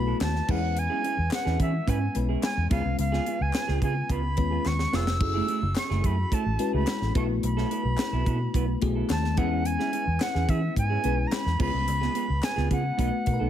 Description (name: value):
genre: polished 1980s jazz-funk pop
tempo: 108 BPM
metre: 4/4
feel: straight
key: E major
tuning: A4 = 436 Hz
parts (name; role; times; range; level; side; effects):
- bright reedy jazz flute; melody; 0.0-13.5 s; E5 to E6; -31 LUFS; equal; none
- bell-like FM electric piano; accompaniment; 0.0-13.5 s; G#3 to B4; -32 LUFS; left 5 dB; phaser, wide subtle chorus
- vintage muted fingered electric bass; bass; 0.0-13.5 s; E#1 to E3; -27 LUFS; equal; none
- semi-hollow electric guitar; riff; 0.1-13.5 s; A3 to B4; -33 LUFS; right 9 dB; lush chorus
- tight funk drum kit; drums; 0.2-13.4 s; crash cymbal, hi-hat, kick drum, snare drum; -30 LUFS; equal; gated reverb
- group handclap; percussion; 0.2-12.6 s; none; -44 LUFS; left 6 dB; none
room: studio reverb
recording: none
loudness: -24 LUFS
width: side -10 dB against mid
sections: 0.0-13.5 A section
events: drum fill 4.7-5.2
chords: 0.5 E6; 2.7 C#7; 5.2 F#m9; 7.2 B7sus4; 9.4 E6; 11.6 C#7; 13.0 B7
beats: 0.21 | 0.76 1.32 1.88 2.43 | 2.99 3.54 4.10 4.65 | 5.21 5.77 6.32 6.88 | 7.43 7.99 8.54 9.10 | 9.65 10.21 10.77 11.32 | 11.88 12.43 12.99